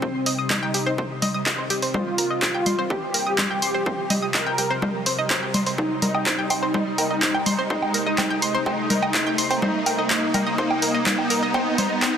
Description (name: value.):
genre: melodic techno.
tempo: 125 BPM.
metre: 4/4.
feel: straight.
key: C minor.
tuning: A4 = 443 Hz.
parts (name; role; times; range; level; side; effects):
wide unison lead; melody; 0.0-12.2 s; C4 to Bb4; -26 LUFS; equal; ensemble chorus, sidechain pumping, dub echo.
analog pluck; arpeggios; 0.0-12.1 s; G4 to Eb6; -27 LUFS; equal; chorus, sidechain pumping, dub echo.
bowed-like drone; drone; 0.0-12.2 s; C3 to G3; -34 LUFS; equal; built-in reverb, sidechain pumping.
electronic kick drum; drums; 0.0-12.1 s; none; -30 LUFS; equal; overdrive, high-pass filter on kick.
riser; sound effects; 1.2-12.2 s; none; -30 LUFS; right 1 dB; none.
punchy analog drum machine; drums; 0.3-12.1 s; congas, handclaps, hi-hat, woodblock; -23 LUFS; equal; overdrive, sidechain pumping on perc, sidechain pumping on hats.
room: moderate huge ambient reverb, RT60 7.3 s.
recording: dense, heavily limited modern master.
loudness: -20 LUFS.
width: side -8 dB against mid.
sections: 0.0-12.2 A section.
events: build-up 0.0-12.2; riser 1.2-12.2.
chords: 0.0 Cm7.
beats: | 0.02 0.50 0.98 1.46 | 1.94 2.42 2.90 3.38 | 3.86 4.34 4.82 5.30 | 5.78 6.26 6.74 7.22 | 7.70 8.18 8.66 9.14 | 9.62 10.10 10.58 11.06 | 11.54 12.02.